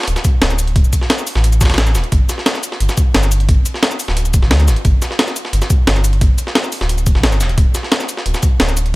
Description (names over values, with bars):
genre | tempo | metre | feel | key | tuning
liquid drum and bass | 176 BPM | 4/4 | straight | unclear | A4 = 440 Hz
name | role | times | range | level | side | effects
breakbeat sampler-style drum kit | drums | 0.0-8.9 s | hi-hat, snare drum | -22 LUFS | equal | high-pass filter on hats, high-pass filter on snare, high-pass filter on room
sub bass with octave | bass | 0.1-8.9 s | D1 to D2 | -15 LUFS | equal | none
breakbeat sampler-style drum kit | drums | 0.1-8.9 s | hi-hat, shaker, snare drum | -19 LUFS | equal | none
electronic kick drum | drums | 0.2-8.5 s | none | -13 LUFS | equal | none
room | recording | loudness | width
little or no reverb | none | -12 LUFS | side -21 dB against mid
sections
0.0-9.0 A section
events
none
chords
none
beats
0.08 0.42 | 0.76 1.10 1.44 1.78 | 2.12 2.46 2.80 3.14 | 3.48 3.83 4.17 4.51 | 4.85 5.19 5.53 5.87 | 6.21 6.55 6.89 7.24 | 7.58 7.92 8.26 8.60